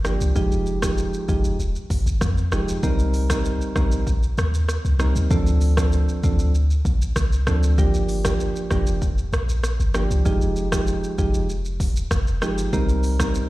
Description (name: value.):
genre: afrobeats.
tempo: 97 BPM.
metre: 4/4.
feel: straight.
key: C minor.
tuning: A4 = 440 Hz.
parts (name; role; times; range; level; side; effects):
soft electric-piano-like synth keys; accompaniment; 0.0-13.5 s; F3 to Bb4; -26 LUFS; right 2 dB; chorus.
clean 808-style bass; bass; 0.0-13.5 s; Eb1 to F2; -22 LUFS; equal; none.
afro-pop drum kit; drums; 0.0-13.5 s; hi-hat, kick drum, rim click, shaker; -24 LUFS; equal; none.
room: little or no reverb.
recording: played on a big sound system in a bare room, large studio reverb.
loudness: -19 LUFS.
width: side -18 dB against mid.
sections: 0.0-2.8 A section; 2.8-13.5 B section.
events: none.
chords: 0.4 Fm9; 2.8 Cm7; 5.3 Dm7; 7.8 Gm7; 10.3 Fm9; 12.7 Cm7.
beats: | 0.36 0.98 1.60 2.21 | 2.83 3.45 4.07 4.69 | 5.31 5.92 6.54 7.16 | 7.78 8.40 9.02 9.64 | 10.26 10.87 11.49 12.11 | 12.73 13.35.